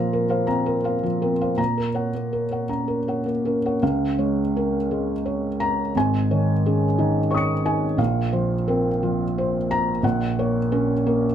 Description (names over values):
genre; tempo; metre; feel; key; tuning
neoclassical minimalist piano; 52-60 BPM (dotted quarters); 6/8; rubato; Db major; A4 = 441 Hz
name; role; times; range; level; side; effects
felt-muted upright piano; solo; 0.0-11.3 s; Ab1 to Db7; -20 LUFS; equal; none
room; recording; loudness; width
light reverb; close, detailed microphones; -20 LUFS; side -9 dB against mid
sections
0.0-3.8 A section; 3.8-11.3 B section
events
none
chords
0.0 Bbsus2; 1.6 Gb/Bb; 3.8 Db6; 5.9 Absus4; 8.0 Bbsus2; 10.0 Gb/Bb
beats
0.50 | 1.58 2.69 | 3.82 4.89 | 5.94 6.96 | 7.99 9.02 | 10.03 11.05